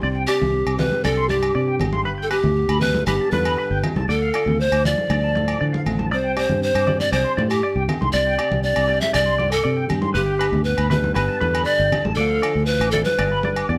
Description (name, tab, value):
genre	highlife guitar band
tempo	118 BPM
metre	4/4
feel	straight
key	unclear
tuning	A4 = 440 Hz
part	flamenco guitar	accompaniment	0.0-13.8 s	G2 to A4	-33 LUFS	equal	none
part	electric guitar at the edge of break-up	arpeggios	0.0-13.8 s	B4 to D6	-29 LUFS	equal	tremolo, slapback echo
part	fingered electric bass	bass	0.0-13.8 s	G1 to D3	-26 LUFS	equal	none
part	bright polished pan flute	melody	0.3-13.7 s	G4 to E5	-23 LUFS	equal	none
part	agogo bells	percussion	0.3-13.7 s	none	-34 LUFS	equal	none
part	congas	percussion	0.4-13.6 s	none	-29 LUFS	equal	none
room	light reverb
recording	none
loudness	-20 LUFS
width	mono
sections	0.0-13.8 A section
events	none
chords	0.0 Csus2; 2.1 Gadd9; 4.1 Dm; 6.1 Csus2; 10.2 Gadd9; 12.2 Dm; 13.2 G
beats	| 0.03 0.53 1.04 1.55 | 2.06 2.56 3.07 3.58 | 4.08 4.59 5.10 5.60 | 6.11 6.62 7.12 7.63 | 8.13 8.64 9.14 9.65 | 10.16 10.66 11.17 11.67 | 12.18 12.68 13.18 13.69